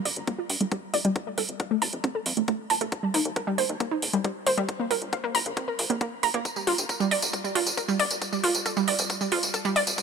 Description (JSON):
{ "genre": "uplifting trance", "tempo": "136 BPM", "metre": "4/4", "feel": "straight", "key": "unclear", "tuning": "A4 = 440 Hz", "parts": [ { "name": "analog pluck", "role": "arpeggios", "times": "0.1-9.8 s", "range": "G3 to Bb5", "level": "-26 LUFS", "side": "right 1 dB", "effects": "chorus, sidechain pumping, dub echo" }, { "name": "plucky analog bass", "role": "bass", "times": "0.1-9.9 s", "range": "Eb1 to G2", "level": "-34 LUFS", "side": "left 2 dB", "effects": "sidechain pumping, high-pass filter" }, { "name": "electronic hi-hat and tambourine", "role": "drums", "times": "0.1-10.0 s", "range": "none", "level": "-28 LUFS", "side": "right 2 dB", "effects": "small room ambience" }, { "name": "electronic kick drum", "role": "drums", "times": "0.3-10.0 s", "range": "none", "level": "-33 LUFS", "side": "left 2 dB", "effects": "high-pass filter on kick, small room ambience" } ], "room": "light reverb", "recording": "none", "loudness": "-24 LUFS", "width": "side -6 dB against mid", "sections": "0.0-10.0 A section", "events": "build-up 0.0-10.0; filter sweep on synth arpeggio sound 0.0-10.0; drum fill 6.5-10.0", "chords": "0.0 N.C.; 1.2 F; 2.9 N.C." }